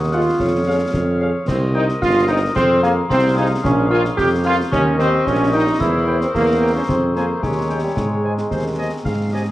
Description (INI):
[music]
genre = military-style march for wind band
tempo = 111 BPM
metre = 2/4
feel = straight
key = Ab major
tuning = A4 = 441 Hz
[part]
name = clear woodwind section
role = second line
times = 0.0-9.5 s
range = G4 to Gb5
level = -28 LUFS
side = equal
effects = none
[part]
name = glockenspiel with rubber mallets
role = second line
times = 0.0-9.5 s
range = G5 to G6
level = -26 LUFS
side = left 3 dB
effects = none
[part]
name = warm tuba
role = bass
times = 0.0-9.5 s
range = G1 to Ab2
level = -20 LUFS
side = right 1 dB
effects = none
[part]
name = clear cornet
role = melody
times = 0.1-9.4 s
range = F5 to Ab5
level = -32 LUFS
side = equal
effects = none
[part]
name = dark French horn section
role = accompaniment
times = 0.1-9.4 s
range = Ab4 to F5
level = -26 LUFS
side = left 4 dB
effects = none
[part]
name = clear trombone section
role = sustained chords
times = 0.1-9.5 s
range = G3 to G4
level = -19 LUFS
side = right 1 dB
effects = none
[part]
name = concert snare drum, concert bass drum and clash cymbals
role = drums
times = 0.4-9.5 s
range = none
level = -27 LUFS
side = left 1 dB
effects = none
[sound]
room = moderate large studio reverb, RT60 0.8 s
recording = worn, warbling old tape, cassette tape, warbly pitch drift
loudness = -15 LUFS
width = side -15 dB against mid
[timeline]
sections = 0.0-9.5 A section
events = none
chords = 0.4 Db/F; 1.5 Cm7; 2.6 Fm; 3.6 Bb5; 4.7 Eb; 5.8 C7/E; 6.9 Fm; 7.4 Eb7; 8.0 Ab